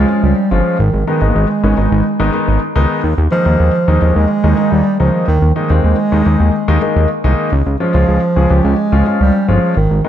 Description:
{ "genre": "synth-pop", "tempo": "107 BPM", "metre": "4/4", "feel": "straight", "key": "unclear", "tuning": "A4 = 440 Hz", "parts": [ { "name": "breathy bass clarinet", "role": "melody", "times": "0.0-10.1 s", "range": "Eb3 to Bb3", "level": "-15 LUFS", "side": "right 2 dB", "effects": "digital delay" }, { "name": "warm concert grand piano", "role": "accompaniment", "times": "0.0-10.1 s", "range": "Eb3 to Ab4", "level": "-18 LUFS", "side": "left 3 dB", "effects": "none" }, { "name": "fat analog bass", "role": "bass", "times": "0.0-10.0 s", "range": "G1 to Eb2", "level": "-13 LUFS", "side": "equal", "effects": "none" } ], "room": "light reverb, studio reverb", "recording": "dark, warm production", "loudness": "-11 LUFS", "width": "side -10 dB against mid", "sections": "0.0-10.1 A section", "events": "none", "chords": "0.0 Db; 0.8 Abm; 3.0 Ebsus4; 7.5 Db", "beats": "0.23 | 0.79 1.35 1.92 2.48 | 3.04 3.60 4.16 4.72 | 5.28 5.84 6.40 6.96 | 7.52 8.08 8.64 9.21 | 9.77" }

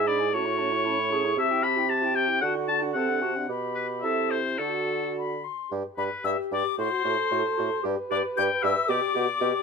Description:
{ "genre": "quick classical-period movement for wind quintet", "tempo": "113 BPM", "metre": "2/4", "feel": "rubato", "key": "G major", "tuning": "A4 = 440 Hz", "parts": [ { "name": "concert flute", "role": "melody", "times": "0.0-9.6 s", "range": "F#5 to G6", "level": "-31 LUFS", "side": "left 10 dB", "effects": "none" }, { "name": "clear oboe", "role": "second line", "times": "0.0-9.6 s", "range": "A4 to B5", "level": "-27 LUFS", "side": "left 4 dB", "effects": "none" }, { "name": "mellow French horn", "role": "accompaniment", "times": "0.0-9.6 s", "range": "C4 to B4", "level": "-33 LUFS", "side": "left 2 dB", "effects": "none" }, { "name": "mellow clarinet", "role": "accompaniment", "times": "0.0-9.5 s", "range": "E4 to A4", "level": "-31 LUFS", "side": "right 7 dB", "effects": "none" }, { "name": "mellow bassoon", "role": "bass", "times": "0.0-9.5 s", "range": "G2 to D3", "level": "-31 LUFS", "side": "right 3 dB", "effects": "none" } ], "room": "light reverb", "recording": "minimal, uncompressed stereo recording", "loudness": "-24 LUFS", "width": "side -5 dB against mid", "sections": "0.0-5.7 A section; 5.7-9.6 B section", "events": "none", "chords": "0.3 A; 1.4 Am7/C; 2.4 D; 3.0 D7/C; 3.5 G/B; 4.0 Am/C; 4.6 D; 5.7 G; 6.8 Am6; 7.8 G; 8.9 G/B", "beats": "| 0.33 0.85 | 1.37 1.90 | 2.42 2.96 | 3.49 4.04 | 4.59 5.16 | 5.71 6.25 | 6.78 7.31 | 7.84 8.37 | 8.89 9.41" }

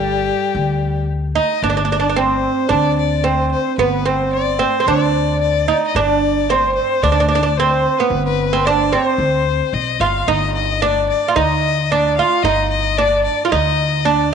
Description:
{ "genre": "Arabic maqam ensemble", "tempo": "111 BPM", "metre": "4/4", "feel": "straight", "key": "unclear", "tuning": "A4 = 441 Hz", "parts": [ { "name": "oud", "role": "melody", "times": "0.0-14.3 s", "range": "G3 to F4", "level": "-17 LUFS", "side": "right 6 dB", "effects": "none" }, { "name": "rich violin", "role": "second line", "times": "0.0-14.3 s", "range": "G4 to F5", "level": "-20 LUFS", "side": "left 10 dB", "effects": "none" }, { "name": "upright bass", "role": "bass", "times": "0.0-14.3 s", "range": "G1 to D2", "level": "-21 LUFS", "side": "left 2 dB", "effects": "none" } ], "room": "wet spring reverb, RT60 2.0 s, small room ambience", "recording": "1960s-style stereo with parts hard left and right, nothing above 10.3 kHz", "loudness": "-14 LUFS", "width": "side -7 dB against mid", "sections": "0.0-1.6 A section; 1.6-14.3 B section", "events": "none", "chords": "none", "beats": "0.00 0.54 1.08 | 1.62 2.16 2.70 3.24 | 3.78 4.32 4.86 5.40 | 5.94 6.48 7.02 7.56 | 8.10 8.64 9.19 9.73 | 10.27 10.81 11.35 11.89 | 12.43 12.97 13.51 14.05" }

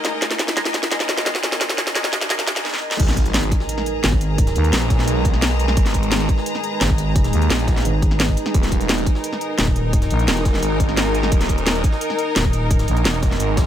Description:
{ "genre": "dark technical drum and bass", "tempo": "173 BPM", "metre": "4/4", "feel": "straight", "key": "G# minor", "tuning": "A4 = 437 Hz", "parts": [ { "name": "deep dark ambient pad", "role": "sustained chords", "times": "0.0-13.7 s", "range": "G#3 to G#5", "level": "-26 LUFS", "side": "right 2 dB", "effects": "chorus, built-in reverb, sidechain pumping" }, { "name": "drum and bass drum kit", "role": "drums", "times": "0.0-13.6 s", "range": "crash cymbal, hi-hat, snare drum", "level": "-22 LUFS", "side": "equal", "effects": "none" }, { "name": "riser, swell and impact", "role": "sound effects", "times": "0.0-4.4, 13.5-13.7 s", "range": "none", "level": "-30 LUFS", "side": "equal", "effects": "none" }, { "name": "bright studio string section", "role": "texture", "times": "0.0-13.7 s", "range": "D#4 to A#5", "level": "-28 LUFS", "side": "left 4 dB", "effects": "sidechain pumping" }, { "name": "clean electric guitar", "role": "arpeggios", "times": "0.2-2.5 s", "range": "G#3", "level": "-28 LUFS", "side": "right 1 dB", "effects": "wide subtle chorus, sidechain pumping, dub echo" }, { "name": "electronic kick drum", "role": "drums", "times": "0.2-13.6 s", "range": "none", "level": "-18 LUFS", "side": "equal", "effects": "high-pass filter on kick, high-pass filter on room" }, { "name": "phased detuned saw bass", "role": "bass", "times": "3.0-13.7 s", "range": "D#1 to B1", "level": "-21 LUFS", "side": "equal", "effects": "phaser, tube saturation, sidechain pumping" }, { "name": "jungle sampler-style drum kit", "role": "drums", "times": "3.0-13.7 s", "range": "hi-hat, snare drum", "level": "-33 LUFS", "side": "equal", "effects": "none" }, { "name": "growling FM bass", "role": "bass", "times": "4.0-4.7, 6.8-10.3, 12.4-13.0 s", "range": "D#1 to D#2", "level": "-19 LUFS", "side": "equal", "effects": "none" } ], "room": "digital ambience", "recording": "high-pass filter", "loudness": "-16 LUFS", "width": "side -10 dB against mid", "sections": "0.0-3.0 A section; 3.0-13.7 B section", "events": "build-up 0.0-3.0; drum fill 0.0-2.6, 2.6-3.0; riser 0.0-2.6; swell 2.3-3.0, 13.5; drop 3.0-13.7; impact 3.0-4.4", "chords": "0.0 D#sus4; 3.0 G#madd9; 8.5 D#sus4", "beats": "| 0.22 0.57 0.91 1.26 | 1.61 1.96 2.30 2.65 | 3.00 3.34 3.69 4.04 | 4.38 4.73 5.08 5.42 | 5.77 6.12 6.46 6.81 | 7.16 7.50 7.85 8.20 | 8.54 8.89 9.24 9.59 | 9.93 10.28 10.62 10.97 | 11.32 11.67 12.01 12.36 | 12.71 13.05 13.40" }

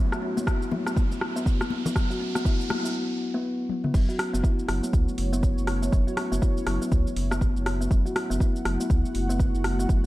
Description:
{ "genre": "afro house", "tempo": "121 BPM", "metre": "4/4", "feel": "swing 60% on 16ths", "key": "F# minor", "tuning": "A4 = 440 Hz", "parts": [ { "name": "dark analog pad", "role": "sustained chords", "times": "0.0-10.1 s", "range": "A3 to F#5", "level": "-36 LUFS", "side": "equal", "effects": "chorus, sidechain pumping" }, { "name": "kalimba", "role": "arpeggios", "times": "0.0-10.1 s", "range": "F#3 to F#4", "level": "-29 LUFS", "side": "left 1 dB", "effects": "sidechain pumping, ping-pong delay" }, { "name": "riser", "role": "sound effects", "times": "0.0-2.9 s", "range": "none", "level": "-38 LUFS", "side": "right 3 dB", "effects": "none" }, { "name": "afro-pop drum kit", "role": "drums", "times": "0.1-10.0 s", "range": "cabasa, crash cymbal, hi-hat, rim click, toms", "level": "-32 LUFS", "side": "equal", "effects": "none" }, { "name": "congas", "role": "percussion", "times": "0.4-2.8 s", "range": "none", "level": "-32 LUFS", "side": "left 5 dB", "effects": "none" }, { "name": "electronic kick drum", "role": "drums", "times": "0.5-10.0 s", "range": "none", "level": "-23 LUFS", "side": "equal", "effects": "overdrive" }, { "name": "round analog bass", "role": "bass", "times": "3.9-10.0 s", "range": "F#1 to C#2", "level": "-28 LUFS", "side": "equal", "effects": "sidechain pumping" } ], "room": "little or no reverb", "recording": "none", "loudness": "-23 LUFS", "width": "side -17 dB against mid", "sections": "0.0-3.9 A section; 3.9-10.1 B section", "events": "build-up 0.0-3.9; riser 0.0-2.9; filter sweep on kalimba 0.0-3.9; break 2.9-3.9; drum fill 3.7; drop 3.9-10.1", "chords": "0.0 F#m7", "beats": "0.47 0.96 1.46 | 1.96 2.45 2.95 3.44 | 3.94 4.44 4.93 5.43 | 5.92 6.42 6.92 7.41 | 7.91 8.40 8.90 9.39 | 9.89" }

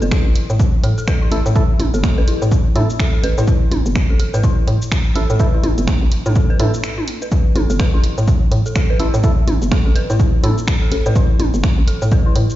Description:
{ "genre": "minimal techno", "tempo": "125 BPM", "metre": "4/4", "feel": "swing 60% on 16ths", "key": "unclear", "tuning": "A4 = 440 Hz", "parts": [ { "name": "dark detuned synth bell", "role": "riff", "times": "0.0-12.3 s", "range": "E4 to B4", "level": "-26 LUFS", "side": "left 1 dB", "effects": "chorus, phaser, sidechain pumping, digital delay" }, { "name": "hollow knocking FM bass", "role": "bass", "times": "0.0-12.5 s", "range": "G1 to A2", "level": "-17 LUFS", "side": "equal", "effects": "tube saturation, sidechain pumping" }, { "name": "punchy analog drum machine", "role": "drums", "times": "0.0-12.6 s", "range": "cabasa, finger snaps, hi-hat", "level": "-28 LUFS", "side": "right 1 dB", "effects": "none" }, { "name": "electronic kick drum", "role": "drums", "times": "0.1-12.2 s", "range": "none", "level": "-16 LUFS", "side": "equal", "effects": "none" }, { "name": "percussive organ stab", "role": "stabs", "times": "1.3-10.6 s", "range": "A3 to A4", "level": "-27 LUFS", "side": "right 1 dB", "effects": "chorus, digital delay" }, { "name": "electronic toms and percussion blips", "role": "percussion", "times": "1.8-11.5 s", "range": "none", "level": "-25 LUFS", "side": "right 2 dB", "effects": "overdrive, digital delay" } ], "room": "little or no reverb", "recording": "played on a big sound system in a bare room, large studio reverb, nothing above 7.6 kHz", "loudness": "-13 LUFS", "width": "side -14 dB against mid", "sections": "0.0-12.6 A section", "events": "break 6.8-7.3", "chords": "0.0 A5", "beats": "0.12 0.60 1.08 | 1.56 2.04 2.52 3.00 | 3.48 3.96 4.44 4.92 | 5.40 5.88 6.36 6.84 | 7.32 7.80 8.28 8.76 | 9.24 9.72 10.20 10.68 | 11.16 11.64 12.12" }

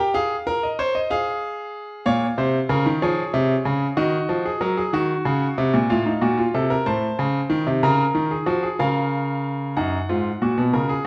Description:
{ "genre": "classical, baroque-style 3-part fugue for grand piano", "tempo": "62 BPM (dotted quarters)", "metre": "12/8", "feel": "straight", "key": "Bb minor", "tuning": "A4 = 441 Hz", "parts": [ { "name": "bright concert grand piano", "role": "solo", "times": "0.0-11.1 s", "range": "Gb2 to Bb5", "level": "-22 LUFS", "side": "equal", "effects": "none" } ], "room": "wet stone room reverb, RT60 1.2 s", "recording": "heard from further back in the room", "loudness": "-22 LUFS", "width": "mono", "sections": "0.0-9.8 A section; 9.8-11.1 B section", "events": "none", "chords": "0.2 Fm/Ab; 2.1 Bbm; 4.0 Ebm; 5.9 F7/A; 7.8 Bbm/Db; 9.8 Ebm/Gb", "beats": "0.15 1.11 | 2.06 3.02 3.98 4.93 | 5.90 6.87 7.83 8.80 | 9.77 10.74" }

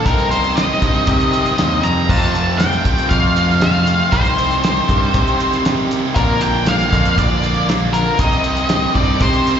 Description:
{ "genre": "classic rock", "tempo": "118 BPM", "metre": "4/4", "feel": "straight", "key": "C dorian", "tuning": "A4 = 442 Hz", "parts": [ { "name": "octave-fuzz lead guitar", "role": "melody", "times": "0.0-9.6 s", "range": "Bb4 to Bb5", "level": "-18 LUFS", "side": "left 1 dB", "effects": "distortion, slapback echo" }, { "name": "distorted electric guitar", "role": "riff", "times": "0.0-9.6 s", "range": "F2 to Eb4", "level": "-23 LUFS", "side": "right 12 dB", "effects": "overdrive, slapback echo" }, { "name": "fuzz guitar", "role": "riff", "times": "0.0-9.6 s", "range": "F2 to Eb4", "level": "-23 LUFS", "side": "equal", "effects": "distortion, slapback echo" }, { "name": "raw garage guitar", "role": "riff", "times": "0.0-9.6 s", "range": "F2 to G4", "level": "-25 LUFS", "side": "left 12 dB", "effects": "overdrive, slapback echo" }, { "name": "growling picked electric bass", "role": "bass", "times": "0.1-9.6 s", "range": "Bb1 to C3", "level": "-19 LUFS", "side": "equal", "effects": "overdrive" }, { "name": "cloth-damped thuddy drum kit", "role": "drums", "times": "0.1-9.6 s", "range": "crash cymbal, hi-hat, kick drum, snare drum", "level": "-19 LUFS", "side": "equal", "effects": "none" } ], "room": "small room ambience", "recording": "live gig heard through the venue's PA, recital hall reverb, nothing above 7.6 kHz", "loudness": "-13 LUFS", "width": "side -8 dB against mid", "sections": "0.0-9.6 A section", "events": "none", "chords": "0.1 Cm; 2.1 F; 4.1 Cm; 6.2 Bb; 8.2 Cm", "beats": "| 0.06 0.57 1.08 1.58 | 2.09 2.60 3.11 3.62 | 4.13 4.63 5.14 5.65 | 6.16 6.67 7.18 7.68 | 8.19 8.70 9.21" }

